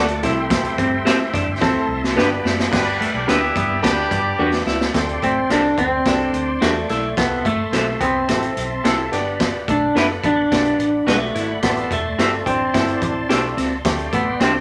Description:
uptempo 1960s-style soul; 108 BPM; 4/4; straight; D mixolydian; A4 = 440 Hz
electric guitar through a small old amp; melody; 0.0-14.5 s; A3 to A4; -23 LUFS; equal
vibraphone with soft mallets; second line; 0.0-2.1 s; A3; -36 LUFS; equal
clear upright piano; accompaniment; 0.0-14.6 s; A3 to D5; -29 LUFS; equal
bright tonewheel organ; sustained chords; 0.0-14.6 s; D5 to D6; -32 LUFS; equal; slow rotary speaker, chorus vibrato
vintage hollow-body jazz guitar; riff; 0.0-14.6 s; A3 to F#4; -27 LUFS; equal
electric guitar through a small old amp; stabs; 0.0-14.5 s; D4 to E5; -24 LUFS; equal; harmonic tremolo
vintage muted picked electric bass; bass; 0.0-14.6 s; E1 to G2; -32 LUFS; equal
raw garage drum kit; drums; 0.1-14.5 s; crash cymbal, hi-hat, kick drum, snare drum; -24 LUFS; equal
clear horn section; second line; 0.2-4.6 s; G3 to E5; -25 LUFS; equal
moderate studio reverb, RT60 0.5 s; -19 LUFS; mono
0.0-2.7 A section; 2.7-5.0 B section; 5.0-14.6 C section
drum fill 1.6-2.7, 4.4-5.0
0.2 C; 1.6 Am; 2.2 G; 5.0 D7sus4; 7.2 C6; 9.1 Gmaj7; 11.6 Am7; 13.9 D7sus4
| 0.50 1.06 1.61 2.17 | 2.73 3.28 3.84 4.39 | 4.95 5.51 6.06 6.62 | 7.18 7.73 8.29 8.85 | 9.40 9.96 10.51 11.07 | 11.63 12.18 12.74 13.29 | 13.85 14.41

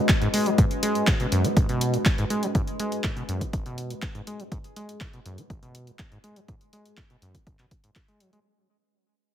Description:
acid house; 122 BPM; 4/4; straight; G# minor; A4 = 443 Hz
warbly tape-like pad; texture; 0.0-8.5 s; G#3 to D#5; -29 LUFS; equal; chorus, built-in reverb, sidechain pumping
electronic kick drum; drums; 0.1-8.1 s; -23 LUFS; equal
punchy analog drum machine; drums; 0.1-8.4 s; handclaps, hi-hat; -30 LUFS; equal
acid bass, saw; riff; 0.2-8.4 s; G#1 to G#3; -28 LUFS; equal; overdrive, vintage 12-bit sampler grit, sidechain pumping, tape echo
moderate plate reverb, RT60 1.4 s; heavily compressed radio sound; -22 LUFS; side -10 dB against mid
0.0-8.5 A section
fade-out 0.0-8.5; filter sweep on acid bass 0.0-8.5
0.0 G#m
0.09 | 0.58 1.07 1.57 2.06 | 2.55 3.04 3.53 4.03 | 4.52 5.01 5.50 5.99 | 6.48 6.97 7.47 7.96

